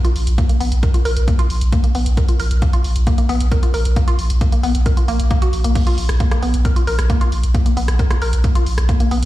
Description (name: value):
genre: driving peak-time techno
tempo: 134 BPM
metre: 4/4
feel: straight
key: unclear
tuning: A4 = 440 Hz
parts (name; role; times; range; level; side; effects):
- woody wave-folded pluck; riff; 0.0-9.1 s; Bb3 to Bb4; -23 LUFS; left 1 dB; chorus, sidechain pumping, digital delay
- punchy analog drum machine; drums; 0.0-9.3 s; crash cymbal, hi-hat, rim click; -29 LUFS; equal; studio reverb
- saturated sub bass; bass; 0.2-9.3 s; Bb1; -18 LUFS; equal; overdrive, sidechain pumping, low-pass filter
- electronic kick drum; drums; 0.4-9.0 s; none; -16 LUFS; equal; studio reverb
room: digital ambience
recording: played on a big sound system in a bare room, large studio reverb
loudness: -14 LUFS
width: side -16 dB against mid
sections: 0.0-9.3 A section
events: none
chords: 0.0 Bb5